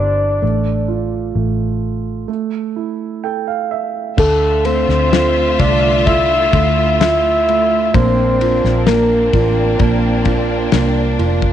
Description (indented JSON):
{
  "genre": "pop ballad",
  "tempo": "64 BPM",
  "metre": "4/4",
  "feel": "straight",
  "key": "D minor",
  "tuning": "A4 = 439 Hz",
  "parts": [
    { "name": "soft octave-layered synth lead", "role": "melody", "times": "0.0-9.8 s", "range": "A4 to E5", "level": "-16 LUFS", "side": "left 1 dB", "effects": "chorus" },
    { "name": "warm concert grand piano", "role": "accompaniment", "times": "0.0-11.5 s", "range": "D3 to G5", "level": "-20 LUFS", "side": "right 11 dB", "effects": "none" },
    { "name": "vintage muted fingered electric bass", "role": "bass", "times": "0.0-11.5 s", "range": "F1 to D2", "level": "-18 LUFS", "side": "left 1 dB", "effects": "none" },
    { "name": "warm studio string section", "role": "sustained chords", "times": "4.2-11.5 s", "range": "D3 to E5", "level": "-20 LUFS", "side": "left 2 dB", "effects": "none" },
    { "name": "damped 70s drum kit", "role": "drums", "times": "4.2-11.5 s", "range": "crash cymbal, kick drum, ride cymbal, snare drum", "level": "-19 LUFS", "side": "left 3 dB", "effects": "none" }
  ],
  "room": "light reverb, small room ambience",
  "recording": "1960s-style stereo",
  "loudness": "-13 LUFS",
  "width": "side -10 dB against mid",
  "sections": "0.0-4.2 A section; 4.2-11.5 B section",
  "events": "break 2.3-4.2; grand piano fill 2.8-4.2",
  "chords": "0.4 Dm/A; 2.3 A5; 4.2 Dmadd9; 7.9 Bbadd9"
}